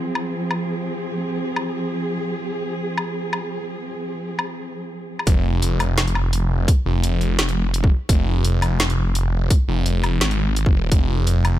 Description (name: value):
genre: half-time drum and bass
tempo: 170 BPM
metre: 4/4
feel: swing 56% on 16ths, half-time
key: F minor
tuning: A4 = 438 Hz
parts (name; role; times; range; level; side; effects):
- dark symphonic cello section; sustained chords; 0.0-5.2 s; F3 to Ab4; -25 LUFS; right 1 dB; sidechain pumping
- drum and bass drum kit; drums; 0.2-11.5 s; hi-hat, snare drum, woodblock; -24 LUFS; left 1 dB; overdrive, small room ambience
- phased detuned saw bass; bass; 5.3-11.6 s; F1 to Ab1; -19 LUFS; equal; phaser, tube saturation
- electronic kick drum; drums; 5.3-11.0 s; none; -16 LUFS; equal; small room ambience
room: light reverb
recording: none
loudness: -19 LUFS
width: side -13 dB against mid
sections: 0.0-5.3 A section; 5.3-11.6 B section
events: drop 5.3-11.6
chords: 0.0 F5; 5.3 N.C.